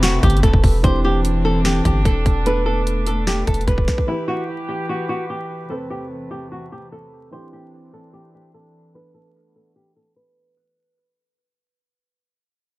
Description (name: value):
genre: hip hop, trap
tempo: 148 BPM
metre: 4/4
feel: half-time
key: unclear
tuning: A4 = 440 Hz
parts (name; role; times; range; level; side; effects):
- flamenco guitar; melody; 0.0-10.5 s; E4 to C5; -24 LUFS; equal; low-pass filter, analog delay
- dark concert grand piano; accompaniment; 0.0-10.6 s; E3 to B4; -28 LUFS; right 2 dB; low-pass filter, analog delay
- dark chamber string section; sustained chords; 0.0-10.6 s; E2 to B4; -27 LUFS; left 1 dB; low-pass filter
- long sustained 808-style bass; bass; 0.0-3.9 s; E1 to G1; -19 LUFS; equal; none
- trap drum kit; drums; 0.0-4.1 s; hi-hat, kick drum, snare drum; -19 LUFS; equal; none
room: small room ambience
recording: echo-heavy mix, vinyl crackle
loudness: -17 LUFS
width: side -19 dB against mid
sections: 0.0-10.6 A section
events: fade-out 0.0-10.6; filter sweep 0.0-10.6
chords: 0.0 Amadd9/E; 0.8 Cadd9/E; 2.5 Bm7/E; 4.1 Em; 5.7 Amadd9/E; 7.3 Cadd9/E; 8.9 Bm7/E